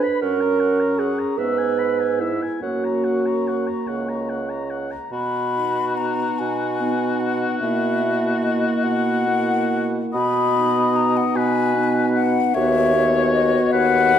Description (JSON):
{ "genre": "classical, slow romantic movement for wind quintet", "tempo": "49 BPM (dotted quarters)", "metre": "6/8", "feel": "uneven beats, rubato", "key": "B major", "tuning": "A4 = 440 Hz", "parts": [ { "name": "mellow hollow concert flute", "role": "melody", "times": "0.0-14.2 s", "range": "D#5 to E6", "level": "-24 LUFS", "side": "left 6 dB", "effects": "none" }, { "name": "warm oboe", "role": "second line", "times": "0.0-14.2 s", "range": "F#4 to B5", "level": "-26 LUFS", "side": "left 4 dB", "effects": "none" }, { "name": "dark clarinet", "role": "accompaniment", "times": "0.0-14.2 s", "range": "D#4 to Cb5", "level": "-24 LUFS", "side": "right 3 dB", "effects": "none" }, { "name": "mellow French horn", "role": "accompaniment", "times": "0.0-14.2 s", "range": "A#3 to D4", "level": "-25 LUFS", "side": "equal", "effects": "none" }, { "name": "mellow bassoon", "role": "bass", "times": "0.0-14.2 s", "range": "C#2 to B2", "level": "-24 LUFS", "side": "right 2 dB", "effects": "none" } ], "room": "wet recital hall reverb, RT60 1.7 s", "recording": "dark, warm production", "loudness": "-18 LUFS", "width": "side -9 dB against mid", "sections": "0.0-5.1 A section; 5.1-14.2 B section", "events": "none", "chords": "0.2 F#; 1.4 E/G#; 2.6 F#; 5.1 B; 7.6 F#7/B; 10.1 B; 12.6 B/D#" }